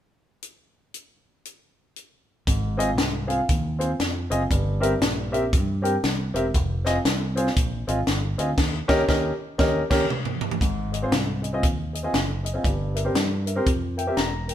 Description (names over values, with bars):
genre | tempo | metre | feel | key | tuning
uptempo gospel | 118 BPM | 4/4 | swing 62% on 8ths | Ab major | A4 = 440 Hz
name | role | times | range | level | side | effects
crisp fusion drum kit | drums | 0.4-14.5 s | crash cymbal, hi-hat, kick drum, snare drum, toms | -25 LUFS | equal | none
dark grand piano | accompaniment | 2.5-14.5 s | G2 to Bb5 | -25 LUFS | equal | none
fingered electric bass | bass | 2.5-14.5 s | E1 to G2 | -28 LUFS | equal | none
room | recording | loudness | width
light reverb | band playing live in one room | -21 LUFS | side -11 dB against mid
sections
0.4-2.5 A section; 2.5-10.6 B section; 10.6-14.5 C section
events
drum fill 8.6-10.6; band accent 8.6-10.6; grand piano fill 13.7-14.5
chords
0.4 N.C.; 2.5 Ab6; 4.5 C7/G; 6.5 Fm7; 8.6 Eb7; 10.6 Ab6; 12.6 C7/G